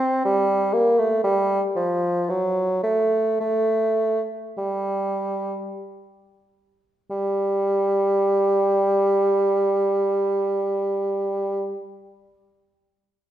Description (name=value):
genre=classical, baroque-style fantasia for unaccompanied bassoon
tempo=45-62 BPM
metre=3/4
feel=rubato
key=G minor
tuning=A4 = 440 Hz
part: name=warm bassoon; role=solo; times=0.0-11.7 s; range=F3 to C4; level=-20 LUFS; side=right 1 dB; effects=none
room=wet recital hall reverb, RT60 1.7 s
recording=recorded in a church or concert hall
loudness=-20 LUFS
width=side -11 dB against mid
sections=0.0-7.1 A section; 7.1-11.0 B section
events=slowing down 0.0-7.1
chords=none